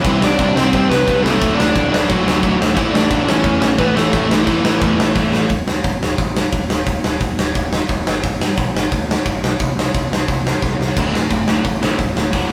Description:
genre	punk rock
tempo	176 BPM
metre	4/4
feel	straight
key	D major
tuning	A4 = 440 Hz
part	bluesy overdriven lead guitar	melody	0.0-5.0 s	E3 to D5	-20 LUFS	equal	distortion
part	overdriven semi-hollow guitar	riff	0.0-5.5, 11.0-12.5 s	D2 to C4	-23 LUFS	equal	none
part	sludgy distorted guitar	riff	0.0-5.5, 11.0-12.5 s	D2 to C4	-24 LUFS	equal	overdrive
part	growling picked electric bass	bass	0.0-12.4 s	D1 to G2	-27 LUFS	equal	overdrive
part	big rock drum kit	drums	0.0-12.4 s	crash cymbal, hi-hat, kick drum, snare drum	-20 LUFS	equal	none
room	light reverb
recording	rough rehearsal-room recording, warm saturation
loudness	-17 LUFS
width	mono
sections	0.0-5.5 A section; 5.5-12.5 B section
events	drum fill 5.2-5.5, 10.6-11.0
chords	0.0 C; 1.4 D; 2.8 A; 5.5 N.C.; 8.1 G; 9.6 N.C.; 11.0 D5

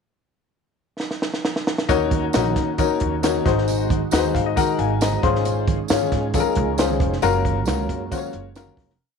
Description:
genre	uptempo 1960s-style soul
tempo	135 BPM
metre	4/4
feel	straight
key	unclear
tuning	A4 = 441 Hz
part	compact cocktail drum kit	drums	1.0-9.0 s	hi-hat, kick drum, snare drum	-24 LUFS	right 2 dB	none
part	warm upright piano	accompaniment	1.9-8.9 s	Db4 to C6	-21 LUFS	left 11 dB	none
part	tonewheel organ	sustained chords	1.9-9.0 s	Eb3 to Ab4	-29 LUFS	right 15 dB	slow rotary speaker, overdrive, chorus vibrato
part	upright bass	bass	1.9-9.0 s	F1 to Eb3	-26 LUFS	right 2 dB	none
part	congas	percussion	1.9-8.9 s	none	-32 LUFS	right 14 dB	none
part	tambourine	percussion	1.9-8.7 s	none	-36 LUFS	right 16 dB	none
room	moderate spring reverb, RT60 2.0 s, small room ambience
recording	1960s-style stereo with parts hard left and right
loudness	-18 LUFS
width	side -6 dB against mid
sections	0.1-1.9 pickup bar; 1.9-9.0 pre-chorus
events	drum fill 1.0-1.9; upright piano fill 4.1-5.5; fade-out 7.2-9.0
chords	0.1 N.C.; 1.9 Ebm7; 3.5 Ab7; 5.2 Dbmaj7/Ab; 7.2 Gbmaj7

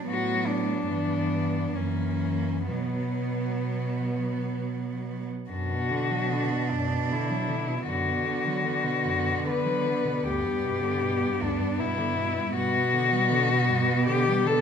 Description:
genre	classical, lyrical piece for cello ensemble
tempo	60-81 BPM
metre	3/4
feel	rubato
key	B minor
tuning	A4 = 440 Hz
part	warm cello	second line	0.0-14.6 s	A#3 to D4	-32 LUFS	right 6 dB	none
part	rich cello	accompaniment	0.0-14.6 s	D2 to G3	-32 LUFS	left 1 dB	none
part	dark cello	melody	0.1-14.6 s	B3 to B4	-28 LUFS	left 5 dB	none
part	warm cello	bass	0.1-14.6 s	F#2 to D3	-31 LUFS	right 2 dB	none
room	moderate recital hall reverb, RT60 1.6 s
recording	minimal, uncompressed stereo recording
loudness	-24 LUFS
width	side -7 dB against mid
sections	0.0-5.5 A section; 5.5-14.6 B section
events	none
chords	0.1 B5/A; 0.9 Em/G; 1.8 F#7; 2.7 B5; 5.5 Bm/F#; 10.3 G/D; 12.6 G

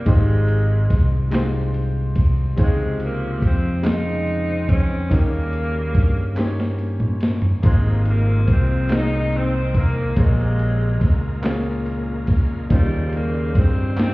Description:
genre	slow gospel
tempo	47 BPM (dotted quarters)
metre	6/8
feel	straight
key	Ab major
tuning	A4 = 440 Hz
part	bright saxophone section	melody	0.0-14.1 s	Bb2 to Eb4	-26 LUFS	equal	none
part	warm concert grand piano	accompaniment	0.0-14.1 s	Ab2 to Eb5	-27 LUFS	left 2 dB	none
part	fingered electric bass	bass	0.1-14.1 s	Ab1 to G2	-21 LUFS	equal	none
part	breakbeat sampler-style drum kit	drums	0.1-14.1 s	kick drum, ride cymbal, snare drum, toms	-18 LUFS	equal	none
part	group handclap	percussion	1.3-14.1 s	none	-38 LUFS	right 3 dB	none
part	bright tonewheel organ	sustained chords	7.6-14.1 s	Db3 to C5	-34 LUFS	right 1 dB	slow rotary speaker, overdrive, chorus vibrato
room	little or no reverb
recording	heard muffled through a wall, stone room reverb, EQ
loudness	-17 LUFS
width	side -20 dB against mid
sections	0.0-14.1 A section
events	drum fill 6.4-7.6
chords	0.1 Fm9/Ab; 2.6 Dbmaj9; 5.1 Eb7; 7.6 Ab69; 10.2 Bbm9; 12.7 Eb13

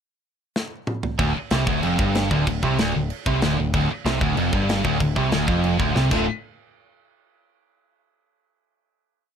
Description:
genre	punk rock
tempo	189 BPM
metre	4/4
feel	straight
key	D minor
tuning	A4 = 440 Hz
part	tight metal drum kit	drums	0.6-6.2 s	crash cymbal, kick drum, snare drum, toms	-26 LUFS	equal	none
part	overdriven electric guitar	riff	1.2-6.2 s	D2 to F4	-24 LUFS	right 10 dB	none
part	overdriven semi-hollow guitar	riff	1.2-6.2 s	D2 to F4	-25 LUFS	left 10 dB	none
part	scooped high-gain guitar	riff	1.2-6.2 s	D2 to D3	-27 LUFS	equal	distortion
part	growling picked electric bass	bass	1.2-6.3 s	D1 to C2	-27 LUFS	equal	overdrive
room	light reverb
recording	none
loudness	-19 LUFS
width	side -8 dB against mid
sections	0.0-1.2 pickup bar; 1.2-6.3 riff; 6.3-7.5 final hit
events	drum fill 0.6-1.2, 6.0-6.3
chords	0.0 N.C.; 1.2 Dm; 6.3 N.C.

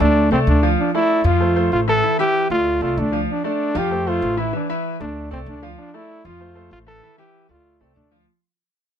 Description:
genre	latin, salsa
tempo	192 BPM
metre	4/4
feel	straight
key	D minor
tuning	A4 = 438 Hz
part	clear trombone	melody	0.0-8.2 s	C4 to A4	-20 LUFS	equal	none
part	clear concert grand piano	accompaniment	0.0-8.3 s	E3 to F5	-23 LUFS	equal	none
part	upright bass	bass	0.0-8.2 s	A1 to F2	-21 LUFS	equal	none
room	light reverb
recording	close, detailed microphones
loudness	-16 LUFS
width	side -9 dB against mid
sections	0.0-8.3 A section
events	fade-out 0.0-8.3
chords	0.2 Dm; 1.4 F; 2.0 A5; 2.7 Dm; 3.9 F; 4.5 A5; 5.2 Dm; 6.4 F; 7.0 A5; 7.7 Dm

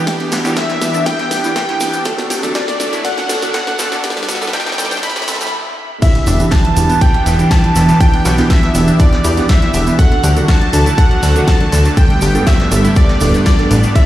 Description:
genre	progressive house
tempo	121 BPM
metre	4/4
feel	straight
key	E minor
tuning	A4 = 440 Hz
part	plucky unison lead	melody	0.0-14.1 s	D5 to B5	-20 LUFS	equal	lush chorus, digital delay
part	filtered supersaw swell	sustained chords	0.0-14.1 s	D3 to A4	-22 LUFS	equal	sidechain pumping
part	glassy wavetable pluck	arpeggios	0.0-14.0 s	E3 to A4	-22 LUFS	equal	chorus, sidechain pumping, digital delay
part	felt-muted upright piano	stabs	0.0-14.1 s	G2 to A4	-19 LUFS	right 2 dB	sidechain pumping, digital delay
part	riser and impact	sound effects	0.2-8.0 s	none	-27 LUFS	equal	none
part	electronic kick drum	drums	0.1-14.1 s	none	-12 LUFS	equal	high-pass filter on kick
part	pop drum kit	drums	0.1-14.1 s	crash cymbal, hi-hat, snare drum	-22 LUFS	equal	none
part	vintage brush drum kit	drums	0.1-14.1 s	hi-hat, ride cymbal, snare drum	-27 LUFS	left 1 dB	none
part	egg shaker	percussion	0.1-14.1 s	none	-28 LUFS	right 3 dB	none
part	plucky analog bass	bass	6.3-13.9 s	D1 to E2	-13 LUFS	equal	sidechain pumping
room	light reverb, studio reverb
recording	played on a big sound system in a bare room, stone room reverb, high-pass filter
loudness	-11 LUFS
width	side -14 dB against mid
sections	0.0-6.0 A section; 6.0-14.1 B section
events	build-up 0.0-6.0; drum fill 0.0-5.5; filter sweep on synth arpeggio sound 0.0-6.0; filter sweep 0.0-6.0; stop 5.5-6.0; drop 6.0-14.1; impact 6.0-8.0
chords	0.0 Em7; 2.1 D; 4.0 Gadd9; 6.0 Em7; 10.0 D; 12.0 Gadd9

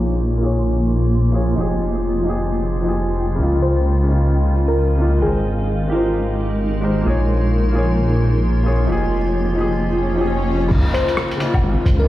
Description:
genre	future garage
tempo	131 BPM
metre	4/4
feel	swing 62% on 16ths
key	unclear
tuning	A4 = 438 Hz
part	warm upright piano	accompaniment	0.0-12.1 s	Db3 to G5	-22 LUFS	left 1 dB	sidechain pumping, analog delay
part	granular cloud pad	sustained chords	0.0-12.1 s	Ab3 to C6	-24 LUFS	right 1 dB	built-in reverb, sidechain pumping
part	dark detuned saw bass	bass	0.0-12.1 s	F1 to Db2	-18 LUFS	equal	sidechain pumping
part	bell-like FM electric piano	melody	3.6-6.3, 10.9-12.1 s	F4 to C5	-24 LUFS	left 1 dB	chorus, tape echo
part	swell	sound effects	9.9-10.7 s	none	-28 LUFS	left 2 dB	none
part	electronic kick drum	drums	10.7-12.0 s	none	-17 LUFS	equal	vintage 12-bit sampler grit
part	lo-fi sampler-style drum kit	drums	10.7-12.0 s	crash cymbal, hi-hat, rim click, woodblock	-25 LUFS	left 1 dB	vintage 12-bit sampler grit
room	light reverb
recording	played on a big sound system in a bare room, large studio reverb, vinyl crackle, low-pass filter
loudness	-16 LUFS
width	side -15 dB against mid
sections	0.0-10.7 A section; 10.7-12.1 B section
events	filter sweep 0.0-10.7; swell 9.9-10.7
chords	0.0 Bbm7; 1.6 Fm9; 3.4 Db69; 5.2 Abmaj9; 7.1 Bbm7; 8.9 Fm9; 10.7 Db69

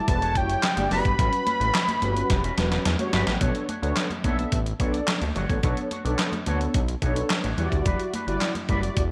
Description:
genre	early-eighties boogie funk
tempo	108 BPM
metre	4/4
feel	straight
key	B minor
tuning	A4 = 440 Hz
part	fat analog lead	melody	0.0-2.8 s	G5 to B5	-28 LUFS	equal	none
part	mellow synth brass	accompaniment	0.0-9.0 s	G3 to E5	-32 LUFS	equal	chorus
part	mellow synth brass	second line	0.1-3.4 s	B3 to B4	-38 LUFS	equal	chorus
part	electric guitar with an envelope filter	riff	0.1-9.0 s	G3 to D5	-37 LUFS	equal	lush chorus
part	fat analog bass	bass	0.1-9.1 s	E1 to E2	-30 LUFS	equal	none
part	clean 12-bit digital drum machine	drums	0.1-9.1 s	handclaps, hi-hat, kick drum, snare drum	-28 LUFS	equal	gated reverb
part	congas	percussion	0.1-9.1 s	none	-38 LUFS	equal	none
room	light reverb, digital ambience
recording	none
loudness	-25 LUFS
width	mono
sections	0.0-3.4 A section; 3.4-9.1 B section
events	drum fill 2.3-3.4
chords	0.0 Em9; 1.2 A13; 3.4 Bm9; 7.6 Em9

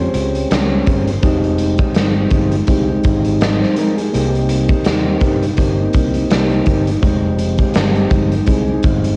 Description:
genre	indie pop, bedroom pop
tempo	83 BPM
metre	4/4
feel	swing 55% on 16ths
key	F minor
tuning	A4 = 440 Hz
part	mellow electric guitar	accompaniment	0.0-9.2 s	C3 to C5	-22 LUFS	equal	subtle chorus, warbly pitch drift
part	mellow tonewheel organ	accompaniment	0.0-9.2 s	Ab3 to Eb5	-22 LUFS	equal	slow rotary speaker, cassette tape
part	sustaining fretless electric bass	bass	0.0-9.2 s	F1 to G2	-22 LUFS	equal	subtle chorus
part	raw garage drum kit	drums	0.0-9.2 s	hi-hat, kick drum, snare drum	-19 LUFS	equal	none
room	light reverb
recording	home recording on cassette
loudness	-15 LUFS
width	mono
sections	0.0-9.2 A section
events	none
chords	0.0 Bbm9; 1.2 Fm9; 4.1 Cm7; 7.0 Fm9

